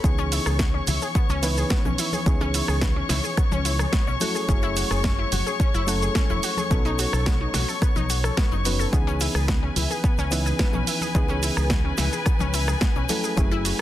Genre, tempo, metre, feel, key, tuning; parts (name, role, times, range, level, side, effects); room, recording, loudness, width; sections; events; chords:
nu-disco, nu disco; 108 BPM; 4/4; straight; C# minor; A4 = 440 Hz
reed electric piano; accompaniment; 0.0-13.8 s; E3 to B4; -30 LUFS; right 1 dB; slapback echo
muted studio violin section; sustained chords; 0.0-13.8 s; B4 to C#6; -30 LUFS; left 4 dB; sidechain pumping
wide unison pluck; arpeggios; 0.0-13.8 s; B3 to A4; -32 LUFS; moving between left 7 dB and right 2 dB; auto-pan, sidechain pumping, analog delay
fingered electric bass; bass; 0.0-13.7 s; E1 to C#2; -26 LUFS; equal; sidechain pumping
electronic kick drum; drums; 0.0-13.5 s; -22 LUFS; equal
house drum kit; drums; 0.0-13.8 s; hi-hat, rim click, shaker, snare drum; -28 LUFS; right 2 dB; soft clipping on snare
cabasa, congas and bongos; percussion; 0.0-13.8 s; -34 LUFS; left 5 dB
little or no reverb; dense, heavily limited modern master; -20 LUFS; side -13 dB against mid
0.0-13.8 A section
0.0 C#m7; 4.2 F#m9; 6.7 B7; 8.9 C#m7; 13.1 F#m9